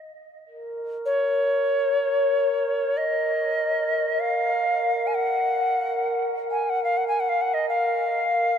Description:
world meditative, free-time meditation music; free time; A4 = 440 Hz
glass harmonica; texture; 0.5-8.6 s; Bb4; -29 LUFS; right 2 dB
Native American-style cedar flute; melody; 1.1-8.6 s; Db5 to Ab5; -22 LUFS; left 1 dB; tape echo
wet huge ambient reverb, RT60 8.6 s; -21 LUFS; side -8 dB against mid
0.0-8.6 A section
free time

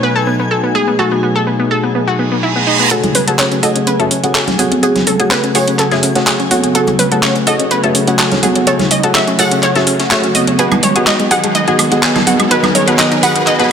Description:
progressive house; 125 BPM; 4/4; straight; F# dorian; A4 = 436 Hz
wide unison pluck; melody; 0.0-13.6 s; F#4 to F#5; -18 LUFS; equal; tape echo
warm analog pad; sustained chords; 0.0-13.7 s; B2 to G#4; -18 LUFS; left 1 dB; chorus
analog pluck; arpeggios; 0.0-13.7 s; G#3 to D#5; -18 LUFS; equal; chorus, tape echo
backwards swelling texture; texture; 0.0-13.7 s; G#4 to G#5; -27 LUFS; left 1 dB; built-in reverb
reverse cymbal and riser; sound effects; 2.2-13.7 s; -22 LUFS; right 2 dB
felt-muted upright piano; stabs; 2.9-13.7 s; A3 to F#5; -18 LUFS; equal; low-pass filter, tape echo
breakbeat sampler-style drum kit; drums; 2.9-13.7 s; hi-hat, snare drum; -23 LUFS; left 1 dB
pop drum kit; drums; 2.9-13.7 s; handclaps, hi-hat, woodblock; -16 LUFS; equal; low-pass filter on hats, low-pass filter on snare, low-pass filter on perc
saturated sub bass; bass; 3.0-13.7 s; barely audible
congas and woodblock; percussion; 3.0-13.7 s; -18 LUFS; right 3 dB
moderate lush hall reverb, RT60 2.6 s; -10 LUFS; side -7 dB against mid
0.0-2.9 A section; 2.9-13.7 B section
filter sweep on analog synth pad 0.0-2.9; filter sweep 0.0-2.9; reverse cymbal 2.2-2.9; build-up 2.9-13.7; filter sweep on synth pluck 2.9-13.7; filter sweep on felt piano 2.9-13.7
0.0 B7; 2.9 F#madd9; 10.6 G#m7
0.03 0.51 | 0.99 1.47 1.95 2.43 | 2.91 3.39 3.87 4.35 | 4.83 5.31 5.79 6.27 | 6.75 7.23 7.71 8.19 | 8.67 9.15 9.63 10.11 | 10.59 11.07 11.55 12.03 | 12.51 12.99 13.47

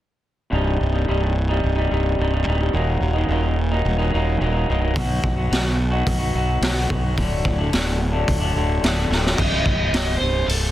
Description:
quiet-loud alternative rock; 108 BPM; 4/4; straight; C dorian; A4 = 442 Hz
electric guitar through a small old amp; arpeggios; 0.5-10.7 s; C2 to F#4; -24 LUFS; left 1 dB; digital delay
fuzz fingered electric bass; bass; 0.5-10.7 s; C1 to B1; -21 LUFS; equal; overdrive
raw garage drum kit; drums; 5.0-10.6 s; crash cymbal, hi-hat, kick drum, snare drum; -22 LUFS; equal
fuzz lead guitar; melody; 9.4-10.7 s; A4 to Eb5; -24 LUFS; equal; distortion, digital delay
little or no reverb; dense, heavily limited modern master; -18 LUFS; side -13 dB against mid
0.5-9.4 A section; 9.4-10.7 B section
drum fill 9.1
0.5 Cm; 2.7 Ebm; 5.0 B; 7.2 D; 9.4 Cm
| 0.52 1.07 1.63 2.18 | 2.74 3.29 3.84 4.40 | 4.95 5.50 6.06 6.61 | 7.16 7.72 8.27 8.82 | 9.38 9.93 10.48

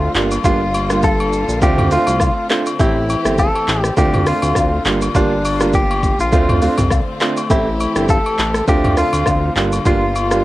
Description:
afrobeats; 102 BPM; 4/4; swing 55% on 16ths; D minor; A4 = 439 Hz
direct-recorded clean electric guitar; melody; 0.0-10.4 s; D4 to A4; -20 LUFS; equal
clear concert grand piano; accompaniment; 0.0-10.4 s; G3 to G4; -19 LUFS; right 3 dB; cassette tape
rich studio string section; sustained chords; 0.0-10.4 s; D3 to G4; -26 LUFS; left 2 dB; cassette tape
fat analog bass; bass; 0.0-10.4 s; G1 to D2; -20 LUFS; equal
deep house drum kit; drums; 0.1-10.4 s; handclaps, hi-hat, kick drum, rim click, shaker, toms; -18 LUFS; equal; cassette tape
agogo bells and woodblock; percussion; 0.3-10.3 s; -24 LUFS; left 5 dB
little or no reverb; home recording on cassette; -13 LUFS; side -16 dB against mid
0.0-10.4 A section
0.1 Gm7; 1.6 Dm7; 2.8 Am7; 4.0 Dm7; 4.9 Gm7; 6.3 Dm7; 7.5 Am7; 8.7 Dm7; 9.6 Gm7
| 0.44 1.03 1.62 2.21 | 2.79 3.38 3.97 4.56 | 5.15 5.74 6.33 6.91 | 7.50 8.09 8.68 9.27 | 9.85 10.44

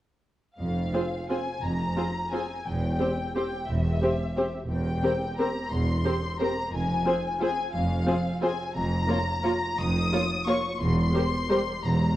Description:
classical; 176 BPM; 3/4; uneven beats, rubato; F minor; A4 = 441 Hz
warm symphonic violin section; melody; 0.6-12.2 s; E5 to Eb6; -32 LUFS; left 3 dB
rich symphonic cello section; bass; 0.6-12.1 s; E2 to F2; -30 LUFS; right 1 dB
rich symphonic double bass section; bass; 0.6-12.1 s; E1 to F1; -30 LUFS; right 1 dB
warm symphonic violin section; second line; 0.9-11.6 s; F4 to Db5; -32 LUFS; left 2 dB
warm symphonic viola section; accompaniment; 0.9-11.6 s; G3 to G4; -31 LUFS; right 1 dB
wet recital hall reverb, RT60 1.7 s; worn, warbling old tape, cassette tape, warbly pitch drift; -24 LUFS; side -14 dB against mid
0.6-12.2 A section
0.6 Fm; 2.7 C/E; 6.7 Fm; 8.8 Bbm/F; 10.8 C7/E
| 0.59 0.94 1.30 | 1.63 1.97 2.33 | 2.66 3.00 3.36 | 3.69 4.03 4.37 | 4.70 5.04 5.39 | 5.72 6.05 6.40 | 6.73 7.06 7.41 | 7.74 8.07 8.42 | 8.76 9.09 9.44 | 9.79 10.13 10.47 | 10.80 11.14 11.50 | 11.84

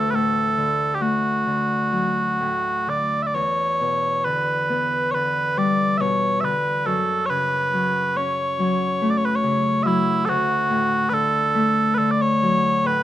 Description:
celtic folk, Celtic slow air; 64-72 BPM; 4/4; rubato; A4 = 439 Hz
mellow small bagpipes; melody; 0.0-13.0 s; E4 to E5; -20 LUFS; right 1 dB
Celtic harp; accompaniment; 0.0-13.0 s; D2 to E4; -23 LUFS; left 2 dB
light reverb; rough home demo mix; -19 LUFS; side -13 dB against mid
0.0-13.0 A section
0.0 D; 3.3 Em7; 6.9 F#m; 10.3 D
0.56 1.47 2.40 | 3.33 4.24 5.13 6.00 | 6.86 7.73 8.59 9.44 | 10.29 11.12 11.98 12.86

